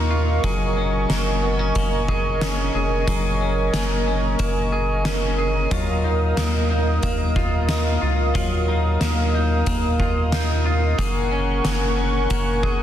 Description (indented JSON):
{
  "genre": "dream pop",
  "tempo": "91 BPM",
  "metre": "4/4",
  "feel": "straight",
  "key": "unclear",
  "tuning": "A4 = 444 Hz",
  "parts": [
    { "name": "warm analog pad", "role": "sustained chords", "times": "0.0-12.8 s", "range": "Bb4 to Eb6", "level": "-25 LUFS", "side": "right 1 dB", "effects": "chorus, shimmer reverb" },
    { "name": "clean electric guitar", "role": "arpeggios", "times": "0.0-12.8 s", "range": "Gb3 to Ab4", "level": "-26 LUFS", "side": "left 2 dB", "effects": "lush chorus, digital delay, shimmer reverb" },
    { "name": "round analog bass", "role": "bass", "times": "0.0-12.8 s", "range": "F1 to Eb2", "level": "-23 LUFS", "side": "equal", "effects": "none" },
    { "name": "oversized low-tuned drum kit", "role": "drums", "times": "0.4-12.8 s", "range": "hi-hat, kick drum, snare drum", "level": "-25 LUFS", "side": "equal", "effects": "none" }
  ],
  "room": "light reverb, small room ambience",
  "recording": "dense, heavily limited modern master",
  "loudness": "-18 LUFS",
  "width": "side -10 dB against mid",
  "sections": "0.0-12.8 A section",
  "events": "none",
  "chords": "0.4 Gbadd9; 5.7 Ebmadd9; 11.0 Gbadd9"
}